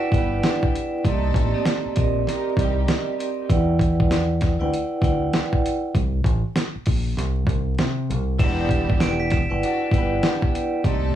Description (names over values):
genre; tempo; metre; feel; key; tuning
hip hop, boom-bap hip-hop; 98 BPM; 4/4; swing 61% on 16ths; unclear; A4 = 440 Hz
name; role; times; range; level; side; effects
glockenspiel with hard plastic mallets; melody; 0.0-1.0, 8.4-10.8 s; B6 to E7; -33 LUFS; left 1 dB; tape echo
vibraphone with medium hard mallets; accompaniment; 0.0-11.2 s; Bb3 to G5; -24 LUFS; right 1 dB; none
dark studio string section; stabs; 0.0-2.8, 8.4-11.2 s; G3 to B4; -31 LUFS; right 1 dB; tape echo
deep dub fingered electric bass; bass; 0.1-11.1 s; E1 to C3; -23 LUFS; equal; none
dusty soul sampler-style drum kit; drums; 0.1-11.0 s; crash cymbal, hi-hat, kick drum, snare drum; -22 LUFS; equal; none
room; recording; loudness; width
little or no reverb; dry, gritty hardware recording, vinyl crackle, studio ambience; -19 LUFS; side -11 dB against mid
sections
0.0-8.4 A section; 8.4-11.2 A section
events
break 5.9-8.4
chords
0.0 Em9; 1.1 Cm9; 3.5 Em9; 5.9 N.C.; 8.4 Em9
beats
0.44 | 1.05 1.66 2.27 2.89 | 3.50 4.11 4.72 5.33 | 5.95 6.56 7.17 7.78 | 8.40 9.01 9.62 10.23 | 10.85